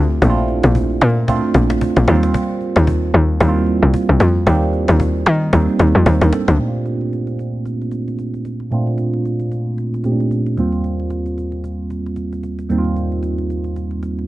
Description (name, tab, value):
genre	amapiano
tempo	113 BPM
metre	4/4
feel	swing 58% on 16ths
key	Bb major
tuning	A4 = 440 Hz
part	mellow tine electric piano	accompaniment	0.0-14.3 s	Eb2 to C5	-19 LUFS	right 2 dB	phaser, low-pass filter
part	tight log drum bass	bass	0.0-6.6 s	Bb1 to Eb3	-13 LUFS	left 1 dB	none
part	cajon	drums	0.1-14.2 s	none	-26 LUFS	left 1 dB	vintage 12-bit sampler grit
room	studio reverb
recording	none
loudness	-15 LUFS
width	side -16 dB against mid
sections	0.0-6.6 A section; 6.6-14.3 B section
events	drop 0.0-6.6; drum fill 5.5-6.6; filter sweep on tine electric piano 6.6-14.3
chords	0.0 Bbmaj7; 2.1 Eb69; 6.6 Bbmaj7; 10.6 Eb69